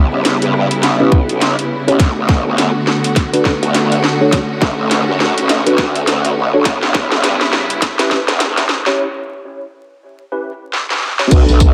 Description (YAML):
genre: glitch hop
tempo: 103 BPM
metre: 4/4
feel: swing 59% on 16ths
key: unclear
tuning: A4 = 440 Hz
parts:
  - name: rich studio string section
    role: sustained chords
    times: 0.0-11.7 s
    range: C#3 to F#4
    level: -21 LUFS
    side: equal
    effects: sidechain pumping
  - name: growl bass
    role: bass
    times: 0.0-11.7 s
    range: B1 to G2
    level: -19 LUFS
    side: equal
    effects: chorus, high-pass filter
  - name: drum and bass drum kit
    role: drums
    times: 0.2-11.7 s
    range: crash cymbal, hi-hat, rim click, snare drum, tambourine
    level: -20 LUFS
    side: equal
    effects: high-pass filter on snare, high-pass filter on hats, high-pass filter on cymbals, high-pass filter on perc, high-pass filter on room
  - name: mellow tine electric piano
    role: stabs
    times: 1.0-11.7 s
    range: C#4 to C#5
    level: -21 LUFS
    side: equal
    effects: ensemble chorus, sidechain pumping, low-pass filter, analog delay
  - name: electronic kick drum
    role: drums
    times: 1.1-11.7 s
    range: none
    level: -15 LUFS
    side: equal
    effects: none
room: moderate plate reverb, RT60 1.7 s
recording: echo-heavy mix, vinyl crackle, high-pass filter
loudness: -14 LUFS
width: mono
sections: 0.0-11.3 A section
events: build-up 0.0-11.3; drum fill 0.0-9.0, 10.7-11.3; filter sweep on tine electric piano 0.0-11.3; filter sweep 0.0-11.3; break 9.0-11.3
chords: 0.0 C#m7b5; 2.0 Bm7; 6.7 C#m7b5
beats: 0.25 0.83 1.42 | 2.00 2.58 3.16 3.75 | 4.33 4.91 5.49 6.08 | 6.66 7.24 7.82 8.40 | 8.99 9.57 10.15 10.73 | 11.32